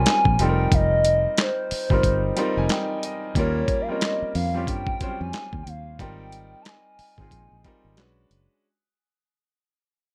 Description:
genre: R&B, neo-soul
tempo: 91 BPM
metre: 4/4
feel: swing 60% on 16ths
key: unclear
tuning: A4 = 438 Hz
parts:
  - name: hollow clarinet-like synth lead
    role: melody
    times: 0.0-8.3 s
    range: C5 to Bb5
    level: -27 LUFS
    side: equal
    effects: chorus
  - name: clear upright piano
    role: accompaniment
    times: 0.0-8.7 s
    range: Gb3 to Bb5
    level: -30 LUFS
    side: equal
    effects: none
  - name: fingered electric bass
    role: bass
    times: 0.0-8.5 s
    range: F1 to G2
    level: -28 LUFS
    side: equal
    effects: none
  - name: dusty soul sampler-style drum kit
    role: drums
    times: 0.1-8.5 s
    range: handclaps, hi-hat, kick drum, snare drum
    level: -27 LUFS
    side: equal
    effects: none
room: light reverb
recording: none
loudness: -23 LUFS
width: mono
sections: 0.0-8.6 A section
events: fade-out 0.0-8.6; upright piano fill 2.0-3.4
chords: 0.4 F9sus4; 3.4 Eb13; 6.0 Abmaj13; 8.0 Bm69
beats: 0.06 | 0.72 1.38 2.04 2.70 | 3.36 4.01 4.67 5.33 | 5.99 6.65 7.31 7.97

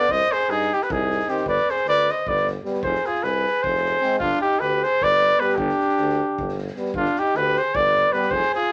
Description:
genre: balkan folk, Balkan brass band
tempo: 306 BPM (eighths)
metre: 7/8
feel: straight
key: G phrygian dominant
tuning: A4 = 440 Hz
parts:
  - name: warm cornet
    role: melody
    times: 0.0-8.7 s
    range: F4 to Eb5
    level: -22 LUFS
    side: equal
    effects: none
  - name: mellow flugelhorn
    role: second line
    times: 0.0-8.7 s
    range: D4 to C5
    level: -30 LUFS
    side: equal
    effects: none
  - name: clear euphonium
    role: accompaniment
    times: 0.0-8.3 s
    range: Eb3 to Ab3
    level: -32 LUFS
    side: equal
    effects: none
  - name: clear trombone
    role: accompaniment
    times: 0.0-8.3 s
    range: B3 to C4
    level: -31 LUFS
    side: equal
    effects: none
  - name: street-band drum kit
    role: percussion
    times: 0.0-8.7 s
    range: kick drum, snare drum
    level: -41 LUFS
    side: equal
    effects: none
  - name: clear tuba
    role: bass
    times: 0.1-8.4 s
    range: F1 to G2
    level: -32 LUFS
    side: equal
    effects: none
room: moderate studio reverb, RT60 0.6 s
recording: none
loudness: -21 LUFS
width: mono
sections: 0.0-6.9 A section; 6.9-8.7 A section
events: none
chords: 0.1 Cm; 1.5 G; 2.8 Fm; 4.2 G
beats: | 0.09 0.29 0.48 0.68 0.88 1.07 1.27 | 1.47 1.66 1.86 2.05 2.25 2.44 2.64 | 2.84 3.03 3.23 3.42 3.62 3.81 4.01 | 4.21 4.40 4.60 4.79 4.99 5.18 5.38 | 5.58 5.77 5.97 6.16 6.36 6.55 6.75 | 6.94 7.14 7.33 7.53 7.72 7.92 8.11 | 8.31 8.50 8.70

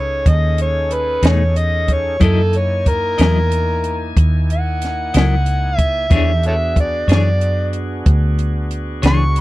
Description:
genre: slow blues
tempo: 62 BPM (dotted quarters)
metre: 12/8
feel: straight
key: unclear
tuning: A4 = 440 Hz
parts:
  - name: overdriven harmonica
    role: melody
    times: 0.0-9.4 s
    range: A4 to C#6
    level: -20 LUFS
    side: equal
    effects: none
  - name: bright tonewheel organ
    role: sustained chords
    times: 0.0-9.4 s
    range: A#3 to G#5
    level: -28 LUFS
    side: right 1 dB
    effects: overdrive, slow rotary speaker
  - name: vintage muted fingered electric bass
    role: bass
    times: 0.0-9.4 s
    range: C#2 to F#2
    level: -17 LUFS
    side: equal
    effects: none
  - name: compact cocktail drum kit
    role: drums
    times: 0.3-9.4 s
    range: hi-hat, kick drum, snare drum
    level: -16 LUFS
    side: equal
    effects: none
  - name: clean electric guitar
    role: accompaniment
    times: 1.2-9.2 s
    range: B2 to D#5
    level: -20 LUFS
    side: left 5 dB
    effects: tremolo
room: small room ambience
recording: dry, close 1970s-style studio recording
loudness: -14 LUFS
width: side -18 dB against mid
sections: 0.0-9.4 A section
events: none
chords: 0.0 B13 (rootless); 2.2 F#13; 6.1 E13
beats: 0.26 1.24 | 2.21 3.19 4.16 5.14 | 6.12 7.09 8.07 9.04

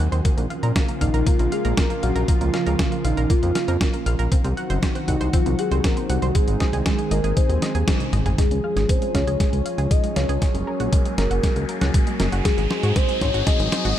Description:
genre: italo disco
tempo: 118 BPM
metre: 4/4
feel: straight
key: Bb minor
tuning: A4 = 440 Hz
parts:
  - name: lush unison pad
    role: sustained chords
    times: 0.0-14.0 s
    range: Db3 to Ab4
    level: -28 LUFS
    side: equal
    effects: chorus, shimmer reverb
  - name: analog pluck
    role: arpeggios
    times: 0.0-13.9 s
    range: Ab3 to Gb5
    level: -31 LUFS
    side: right 2 dB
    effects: chorus, tape echo, shimmer reverb
  - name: chorused synth bass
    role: bass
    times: 0.0-13.9 s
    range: Gb1 to Bb2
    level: -22 LUFS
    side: equal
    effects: none
  - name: dusty soul sampler-style drum kit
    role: drums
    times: 0.0-14.0 s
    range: hi-hat, snare drum, toms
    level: -27 LUFS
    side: equal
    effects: studio reverb
  - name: electronic kick drum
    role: drums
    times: 0.2-13.6 s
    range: none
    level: -21 LUFS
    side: equal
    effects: studio reverb
  - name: soft octave-layered synth lead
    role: melody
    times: 1.0-14.0 s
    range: Eb4 to Eb5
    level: -26 LUFS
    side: left 1 dB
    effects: chorus, phaser, digital delay, shimmer reverb
  - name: riser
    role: sound effects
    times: 10.4-14.0 s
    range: none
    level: -31 LUFS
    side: left 1 dB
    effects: none
room: light reverb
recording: none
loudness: -18 LUFS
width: side -11 dB against mid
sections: 0.0-8.4 A section; 8.4-14.0 B section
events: band accent 7.9; drum fill 8.0-8.4, 8.4-14.0; riser 10.4-14.0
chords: 0.2 Bbm; 4.3 Cdim; 6.4 Ab; 8.4 Db; 10.4 Gbadd9; 12.5 Ab7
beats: | 0.25 0.76 1.27 1.77 | 2.28 2.79 3.30 3.81 | 4.32 4.83 5.33 5.84 | 6.35 6.86 7.37 7.88 | 8.38 8.89 9.40 9.91 | 10.42 10.93 11.44 11.94 | 12.45 12.96 13.47 13.98

